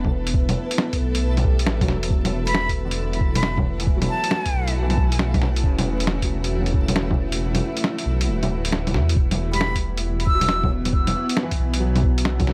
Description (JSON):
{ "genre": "future garage", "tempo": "136 BPM", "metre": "4/4", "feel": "swing 66% on 16ths", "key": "E dorian", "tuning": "A4 = 443 Hz", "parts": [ { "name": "clear upright piano", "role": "accompaniment", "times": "0.0-12.5 s", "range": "B2 to D4", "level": "-35 LUFS", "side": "equal", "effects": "sidechain pumping, analog delay" }, { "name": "granular cloud pad", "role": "sustained chords", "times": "0.0-12.5 s", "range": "A3 to F#5", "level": "-32 LUFS", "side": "equal", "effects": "built-in reverb, vintage 12-bit sampler grit, sidechain pumping" }, { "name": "dark detuned saw bass", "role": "bass", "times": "0.0-12.5 s", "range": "D1 to E2", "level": "-26 LUFS", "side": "equal", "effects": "sidechain pumping" }, { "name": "electronic kick drum", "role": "drums", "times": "0.0-12.5 s", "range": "none", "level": "-24 LUFS", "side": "equal", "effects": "overdrive" }, { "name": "lo-fi sampler-style drum kit", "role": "drums", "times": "0.0-12.5 s", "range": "bongos, hi-hat, snare drum", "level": "-27 LUFS", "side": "equal", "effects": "overdrive" }, { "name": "backwards swelling texture", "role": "texture", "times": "0.0-9.2 s", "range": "A3 to A4", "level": "-41 LUFS", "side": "equal", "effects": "none" }, { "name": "breathy concert flute", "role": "melody", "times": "2.5-4.7, 9.5-10.7 s", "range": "A5 to E6", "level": "-29 LUFS", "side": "equal", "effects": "analog delay" } ], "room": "light reverb, digital ambience", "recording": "vinyl crackle", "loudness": "-21 LUFS", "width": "mono", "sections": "0.0-9.2 A section; 9.2-12.5 A section", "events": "kick drops out 7.4-9.2", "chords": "0.0 Em9; 2.1 Dadd9/E; 9.2 Emadd9", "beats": "| 0.34 0.78 1.22 1.67 | 2.11 2.55 2.99 3.43 | 3.87 4.31 4.75 5.19 | 5.63 6.08 6.52 6.96 | 7.40 7.84 8.28 8.72 | 9.16 9.61 10.05 10.49 | 10.93 11.37 11.81 12.25" }